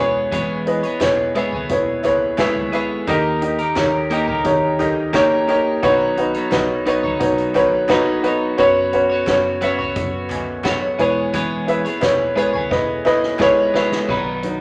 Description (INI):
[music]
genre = piano-driven pop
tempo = 87 BPM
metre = 4/4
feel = straight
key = unclear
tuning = A4 = 440 Hz
[part]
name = warm upright piano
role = accompaniment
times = 0.0-14.6 s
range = B2 to G#5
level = -20 LUFS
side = equal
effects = none
[part]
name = twelve-string electric guitar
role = riff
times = 0.0-14.6 s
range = B2 to C#5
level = -26 LUFS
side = equal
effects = none
[part]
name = vintage muted picked electric bass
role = bass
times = 0.0-14.6 s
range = E1 to D#2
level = -35 LUFS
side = equal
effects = none
[part]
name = soft-mallet drum kit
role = drums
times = 0.3-14.6 s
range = crash cymbal, hi-hat, kick drum, snare drum, toms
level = -31 LUFS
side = equal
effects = none
[part]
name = group handclap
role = percussion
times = 1.0-13.6 s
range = none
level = -36 LUFS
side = equal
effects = none
[sound]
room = moderate large studio reverb, RT60 0.8 s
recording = none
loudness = -18 LUFS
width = mono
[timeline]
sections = 0.0-14.1 A section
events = drum fill 12.7-14.1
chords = 0.0 C#m7/E; 3.1 D#; 5.8 Badd9; 8.6 F#sus4; 11.0 C#m7/E; 14.1 B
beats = | 0.32 1.01 1.70 2.39 | 3.08 3.77 4.45 5.14 | 5.83 6.52 7.21 7.90 | 8.59 9.27 9.96 10.65 | 11.34 12.03 12.71 13.40 | 14.09